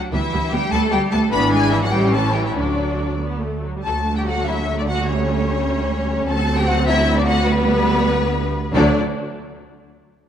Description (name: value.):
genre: quick classical-period movement for string orchestra.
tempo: 89-102 BPM (dotted quarters).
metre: 6/8.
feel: rubato.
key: D major.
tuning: A4 = 436 Hz.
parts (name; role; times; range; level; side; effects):
rich studio cello section; bass; 0.0-9.0 s; D2 to B3; -24 LUFS; right 3 dB; none.
rich studio violin section; melody; 0.1-9.0 s; B4 to B5; -24 LUFS; left 4 dB; none.
rich studio violin section; second line; 0.1-9.0 s; B3 to B4; -24 LUFS; left 2 dB; none.
rich studio viola section; accompaniment; 0.1-9.0 s; E3 to D4; -23 LUFS; right 1 dB; none.
rich studio double bass section; bass; 0.1-9.0 s; G#1 to D2; -23 LUFS; right 2 dB; none.
room: wet scoring stage reverb, RT60 1.9 s.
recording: dark, warm production.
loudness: -16 LUFS.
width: side -9 dB against mid.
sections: 0.0-3.9 A section; 3.9-8.7 B section; 8.7-10.0 C section.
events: none.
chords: 0.1 Em7/D; 1.3 E7/G#; 1.9 A7; 2.6 D; 5.1 A7/D; 6.3 D7; 7.5 G/D; 8.7 D.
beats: | 0.12 0.72 | 1.31 1.92 | 2.56 3.21 | 3.86 4.47 | 5.08 5.68 | 6.28 6.87 | 7.46 8.09 | 8.74.